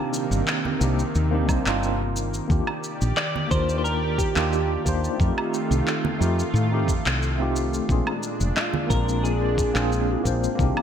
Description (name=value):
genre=sunset chillout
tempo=89 BPM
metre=4/4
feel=straight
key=unclear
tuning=A4 = 440 Hz
part: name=tine electric piano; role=accompaniment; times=0.0-10.8 s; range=A3 to C5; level=-27 LUFS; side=moving between left 5 dB and right 5 dB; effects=fast stereo tremolo, auto-pan, ping-pong delay
part: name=lush unison pad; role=sustained chords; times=0.0-10.8 s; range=Bb2 to D5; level=-29 LUFS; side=equal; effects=chorus
part: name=electronic shaker, handclaps and woodblock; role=drums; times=0.1-10.8 s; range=none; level=-30 LUFS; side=equal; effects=studio ambience, gated reverb
part: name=woody fretless electric bass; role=bass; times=0.3-10.7 s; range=F1 to A2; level=-24 LUFS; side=equal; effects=none
part: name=congas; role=percussion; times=0.7-8.9 s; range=none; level=-32 LUFS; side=right 5 dB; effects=none
part: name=electronic kick drum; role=drums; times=1.5-10.7 s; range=none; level=-25 LUFS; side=equal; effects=studio ambience
part: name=clean electric guitar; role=melody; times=3.2-10.2 s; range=F4 to D5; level=-29 LUFS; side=equal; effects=analog chorus, ping-pong delay
room=moderate plate reverb, RT60 2.0 s, digital ambience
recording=bright 1980s-style digital production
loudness=-21 LUFS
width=side -8 dB against mid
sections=0.0-10.8 A section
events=none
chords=0.0 Cm7; 2.5 Ebmaj7; 5.2 F7; 7.9 Bb7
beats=0.48 1.15 1.82 | 2.50 3.17 3.85 4.52 | 5.20 5.87 6.54 7.22 | 7.89 8.57 9.24 9.91 | 10.59